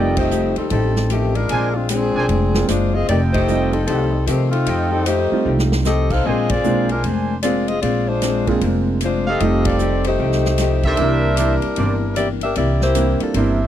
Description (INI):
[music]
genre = jazz, big band swing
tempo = 152 BPM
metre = 4/4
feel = swing 64% on 8ths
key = F mixolydian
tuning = A4 = 440 Hz
[part]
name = dark saxophone section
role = melody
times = 0.0-13.4 s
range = Eb3 to F5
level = -20 LUFS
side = left 2 dB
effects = none
[part]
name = vintage hollow-body jazz guitar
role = accompaniment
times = 0.0-13.6 s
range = Bb2 to G4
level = -26 LUFS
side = left 7 dB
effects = none
[part]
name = warm baby grand piano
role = accompaniment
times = 0.0-13.6 s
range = G3 to Ab4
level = -23 LUFS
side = right 6 dB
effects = none
[part]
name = mellow trumpet section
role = stabs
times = 0.0-13.7 s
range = D4 to Ab5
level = -24 LUFS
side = right 3 dB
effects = none
[part]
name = upright bass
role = bass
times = 0.0-13.7 s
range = F1 to C3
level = -20 LUFS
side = equal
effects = none
[part]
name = swinging big-band drum kit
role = drums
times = 0.2-13.5 s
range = crash cymbal, hi-hat, kick drum, ride cymbal, snare drum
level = -28 LUFS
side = right 1 dB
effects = none
[sound]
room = little or no reverb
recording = dry, close 1970s-style studio recording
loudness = -16 LUFS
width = side -11 dB against mid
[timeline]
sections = 0.0-13.7 A section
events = band accent 0.1, 3.3, 6.4, 9.6; drum fill 5.5-5.9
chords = 0.0 F9; 1.5 Bb9; 3.1 F9; 6.2 Bb9; 9.4 F9; 11.0 C9